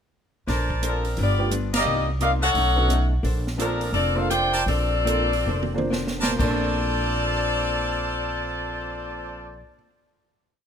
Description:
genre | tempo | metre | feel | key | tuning
jazz, big band swing | 122-174 BPM | 4/4 | swing 63% on 8ths | Bb major | A4 = 440 Hz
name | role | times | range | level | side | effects
archtop guitar, miked and amplified | accompaniment | 0.5-10.0 s | G2 to C5 | -33 LUFS | left 4 dB | none
brilliant trumpet section | stabs | 0.5-9.6 s | Bb4 to A5 | -29 LUFS | right 1 dB | none
upright bass | bass | 0.5-9.6 s | F1 to C2 | -26 LUFS | equal | none
swinging big-band drum kit | drums | 0.5-6.5 s | crash cymbal, hi-hat, kick drum, ride cymbal, snare drum, toms | -31 LUFS | right 2 dB | none
clear saxophone section | melody | 0.9-9.6 s | F3 to G5 | -25 LUFS | left 2 dB | none
warm baby grand piano | accompaniment | 1.4-9.8 s | Bb2 to C5 | -30 LUFS | right 2 dB | none
room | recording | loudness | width
light reverb | minimal, uncompressed stereo recording | -21 LUFS | side -8 dB against mid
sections
0.5-6.4 A section; 6.4-10.3 final chord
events
band accent 1.7; slowing down 3.2-6.4; drum fill 5.5-6.4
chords
0.5 Bbmaj9; 1.2 G7; 1.9 Cm11; 2.6 B9; 3.2 Bbmaj9

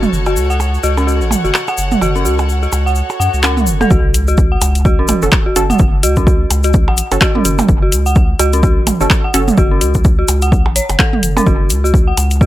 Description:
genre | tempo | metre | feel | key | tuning
minimal techno | 127 BPM | 4/4 | swing 58% on 16ths | F# minor | A4 = 441 Hz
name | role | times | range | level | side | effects
saturated sub bass | bass | 0.0-12.5 s | F#1 to F#2 | -16 LUFS | equal | sidechain pumping
egg shaker | percussion | 0.0-12.5 s | none | -24 LUFS | left 4 dB | none
electronic toms and percussion blips | percussion | 0.0-12.3 s | none | -19 LUFS | right 4 dB | dub echo
bright symphonic string section | texture | 0.0-3.9 s | F#4 to A5 | -23 LUFS | equal | sidechain pumping
dark detuned synth bell | riff | 0.3-12.5 s | C#4 to F#5 | -18 LUFS | equal | chorus, sidechain pumping, dub echo
punchy analog drum machine | drums | 1.5-12.4 s | handclaps, hi-hat | -16 LUFS | left 1 dB | overdrive
swell and sub drop | sound effects | 3.1-5.8 s | none | -23 LUFS | left 1 dB | none
electronic kick drum | drums | 3.9-12.5 s | none | -12 LUFS | equal | overdrive
filtered dub chord stab | stabs | 5.2-9.4 s | C#4 to A4 | -19 LUFS | right 2 dB | chorus, dub echo
room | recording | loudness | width
little or no reverb | none | -10 LUFS | side -15 dB against mid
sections
0.0-3.9 A section; 3.9-12.5 B section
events
swell 3.1-3.9; drop 3.9-12.5; impact 3.9-5.8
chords
0.0 F#m

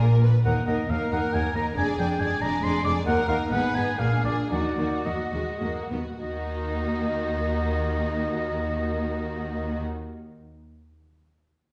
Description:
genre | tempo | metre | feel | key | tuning
classical, dramatic, fast romantic movement for symphony orchestra | 100-141 BPM | 3/4 | rubato | Eb minor | A4 = 440 Hz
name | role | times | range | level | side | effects
rich symphonic violin section | melody | 0.0-9.8 s | Gb4 to D5 | -38 LUFS | equal | none
rich symphonic violin section | second line | 0.0-9.8 s | Eb4 to Cb5 | -37 LUFS | equal | none
rich symphonic viola section | accompaniment | 0.0-9.8 s | Ab3 to F4 | -33 LUFS | equal | none
clear symphonic cello section | bass | 0.0-9.8 s | Eb2 to Eb3 | -30 LUFS | equal | none
rich studio double bass section | bass | 0.0-9.8 s | F1 to Eb2 | -34 LUFS | equal | none
warm oboe | second line | 0.5-9.8 s | D5 to D6 | -32 LUFS | equal | none
room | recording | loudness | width
wet recital hall reverb, RT60 1.3 s | recorded in a church or concert hall, nothing above 10.8 kHz | -26 LUFS | mono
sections
0.0-6.2 A section; 6.2-9.7 B section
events
slowing down 2.4-6.2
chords
0.4 Eb5; 1.8 Ddim/F; 3.1 Ebm; 3.5 Abm; 4.0 Bb7; 4.5 Ebm

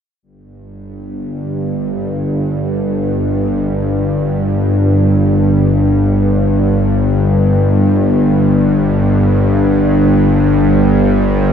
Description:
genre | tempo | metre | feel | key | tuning
ambient | free time | none | none | unclear | A4 = 441 Hz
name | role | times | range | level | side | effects
bowed-like drone | solo | 1.0-11.5 s | G1 to G2 | -11 LUFS | equal | built-in reverb, tape echo
room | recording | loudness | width
wet cathedral reverb, RT60 7.0 s | none | -11 LUFS | side -8 dB against mid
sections
0.2-11.5 A section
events
none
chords
none

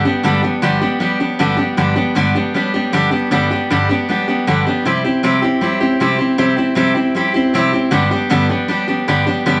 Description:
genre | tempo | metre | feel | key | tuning
rock | 156 BPM | 4/4 | straight | G major | A4 = 440 Hz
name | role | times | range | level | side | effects
picked steel-string acoustic guitar | solo | 0.0-9.6 s | G2 to G4 | -16 LUFS | equal | none
room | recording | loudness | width
moderate large studio reverb, RT60 1.0 s | vinyl crackle | -16 LUFS | mono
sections
0.0-9.6 A section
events
none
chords
0.0 G; 4.8 C; 7.9 G

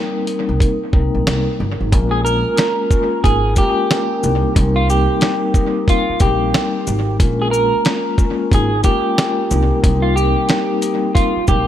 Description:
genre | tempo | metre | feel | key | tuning
hip hop, boom-bap hip-hop | 91 BPM | 4/4 | swing 62% on 16ths | Bb dorian | A4 = 440 Hz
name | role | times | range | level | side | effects
vibraphone with soft mallets | accompaniment | 0.0-11.7 s | G3 to Bb4 | -20 LUFS | left 3 dB | cassette tape, dub echo
dusty soul sampler-style drum kit | drums | 0.3-11.7 s | hi-hat, kick drum, shaker, snare drum | -17 LUFS | equal | none
upright bass | bass | 0.5-11.7 s | G1 to C2 | -19 LUFS | equal | none
electric guitar at the edge of break-up | melody | 2.1-11.7 s | F4 to Bb4 | -19 LUFS | right 1 dB | wide subtle chorus, dub echo
room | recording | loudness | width
digital ambience | echo-heavy mix | -14 LUFS | side -11 dB against mid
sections
0.0-1.9 A section; 1.9-11.7 B section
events
none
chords
0.0 Cm7; 1.9 Bbm7; 4.2 Cm7; 7.2 Bbm7; 9.5 Cm7

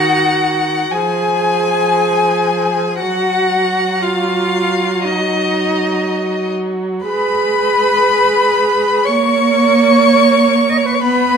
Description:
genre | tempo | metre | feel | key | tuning
classical, slow romantic movement for string quartet | 59 BPM | 4/4 | rubato | Eb minor | A4 = 444 Hz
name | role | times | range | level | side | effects
rich violin | melody | 0.0-11.4 s | Eb5 to Db6 | -19 LUFS | left 10 dB | none
rich violin | second line | 0.0-11.4 s | Eb5 to Db6 | -20 LUFS | left 5 dB | none
clear viola | accompaniment | 0.0-11.4 s | Eb3 to Cb4 | -17 LUFS | right 1 dB | none
rich cello | bass | 0.0-11.4 s | Eb4 to Eb5 | -16 LUFS | right 5 dB | none
room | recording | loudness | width
moderate recital hall reverb, RT60 1.8 s | none | -12 LUFS | side -6 dB against mid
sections
0.0-11.4 A section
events
none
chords
0.0 Ebm; 0.9 Fm; 3.0 Ebm/Gb; 7.1 Abm; 9.1 N.C.

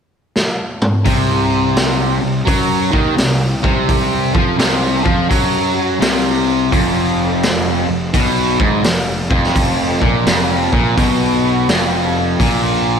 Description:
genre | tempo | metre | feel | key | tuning
blues rock power trio and southern rock | 85 BPM | 4/4 | swing 65% on 8ths | unclear | A4 = 441 Hz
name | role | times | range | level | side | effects
raw garage drum kit | drums | 0.4-12.6 s | hi-hat, kick drum, snare drum, toms | -17 LUFS | equal | none
distorted electric guitar | riff | 1.0-13.0 s | F2 to Gb3 | -15 LUFS | equal | distortion, slapback echo
fuzz picked electric bass | bass | 1.1-13.0 s | F1 to Gb2 | -22 LUFS | equal | overdrive
room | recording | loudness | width
light reverb, studio reverb | none | -13 LUFS | side -7 dB against mid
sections
0.0-1.1 A section; 1.1-13.0 B section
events
drum fill 0.3-1.1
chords
0.0 N.C.; 1.1 C(b5, no3); 6.7 F(b5, no3); 12.4 Bb5

